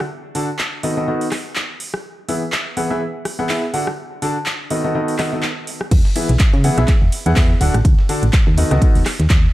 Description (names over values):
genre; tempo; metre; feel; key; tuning
piano house; 124 BPM; 4/4; swing 56% on 16ths; E major; A4 = 440 Hz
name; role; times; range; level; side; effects
house drum kit; drums; 0.0-9.4 s; crash cymbal, handclaps, hi-hat, ride cymbal, rim click; -24 LUFS; equal; none
clear concert grand piano; riff; 0.3-9.0 s; D3 to A5; -21 LUFS; equal; sidechain pumping
solid FM bass; bass; 5.9-9.5 s; D1 to C#3; -16 LUFS; equal; sidechain pumping
dusty soul sampler-style drum kit; drums; 5.9-9.4 s; hi-hat, snare drum; -37 LUFS; equal; none
electronic kick drum; drums; 5.9-9.4 s; none; -14 LUFS; equal; none
room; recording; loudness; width
light reverb; dark, warm production; -15 LUFS; side -16 dB against mid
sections
0.0-5.9 A section; 5.9-9.5 B section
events
drop 5.9-9.5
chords
0.0 D; 0.8 B7/D#; 2.0 E; 3.7 D; 4.7 B7/D#; 5.9 E; 7.6 D; 8.6 B7